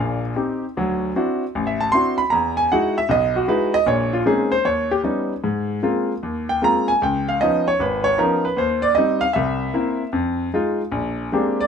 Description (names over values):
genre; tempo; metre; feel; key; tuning
solo jazz; 154 BPM; 4/4; swing 66% on 8ths, rubato; unclear; A4 = 440 Hz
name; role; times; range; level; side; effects
clear baby grand piano; solo; 0.0-11.7 s; Ab1 to C6; -18 LUFS; equal; none
room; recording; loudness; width
light reverb; minimal, uncompressed stereo recording; -18 LUFS; side -7 dB against mid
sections
0.0-11.7 A section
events
grand piano solo 0.0-11.7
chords
0.0 Eb6; 0.8 D9; 2.3 Emaj9; 3.9 Bbm11; 4.6 Ebaug7; 5.4 Ab69; 7.0 Db9; 8.6 Eb6; 9.3 C7; 10.1 Fm7; 10.9 Bb13